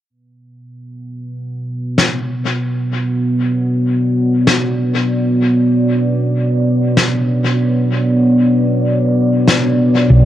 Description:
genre	ambient dub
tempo	free time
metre	none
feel	none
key	B minor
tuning	A4 = 439 Hz
part	deep dark ambient pad	sustained chords	1.0-10.2 s	B3 to D5	-14 LUFS	equal	chorus, built-in reverb, cassette tape
part	snare drum	drums	2.0-9.6 s	none	-17 LUFS	left 2 dB	dub echo
part	hollow-body short-scale fingered electric bass	bass	10.1-10.2 s	B1	-6 LUFS	equal	none
room	small room ambience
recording	home recording on cassette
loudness	-13 LUFS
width	side -12 dB against mid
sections	0.1-10.2 A section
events	filter sweep on ambient pad 0.1-10.2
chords	0.1 Bmadd9

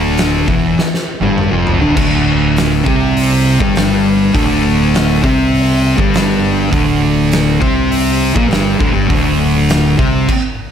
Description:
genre	stoner and doom metal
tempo	101 BPM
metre	4/4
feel	straight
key	D minor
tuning	A4 = 442 Hz
part	thick fuzz guitar	riff	0.0-10.3 s	D2 to C4	-16 LUFS	left 9 dB	distortion
part	thick fuzz guitar	riff	0.0-10.3 s	D2 to C4	-15 LUFS	right 7 dB	distortion
part	fretless electric bass	bass	0.0-10.3 s	D1 to C2	-18 LUFS	equal	overdrive
part	oversized low-tuned drum kit	drums	0.2-10.4 s	crash cymbal, hi-hat, kick drum, snare drum, toms	-18 LUFS	equal	none
room	light reverb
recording	none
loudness	-10 LUFS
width	side -8 dB against mid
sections	0.0-2.0 A section; 2.0-10.7 B section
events	drum fill 0.8-2.0; stop 10.3-10.7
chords	0.0 Dm; 2.0 D7sus4

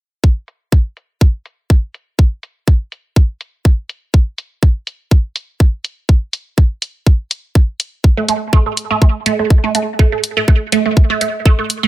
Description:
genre	minimal techno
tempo	123 BPM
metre	4/4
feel	swing 54% on 16ths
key	unclear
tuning	A4 = 435 Hz
part	electronic kick drum	drums	0.2-11.6 s	none	-10 LUFS	equal	none
part	electronic hi-hat	drums	0.5-11.8 s	none	-18 LUFS	left 1 dB	low-pass filter on hats
part	resonant blip pluck	riff	8.2-11.9 s	A3	-16 LUFS	right 5 dB	phaser, analog chorus, sidechain pumping, tape echo
room	little or no reverb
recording	none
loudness	-13 LUFS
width	side -15 dB against mid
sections	0.2-11.9 A section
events	none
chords	none

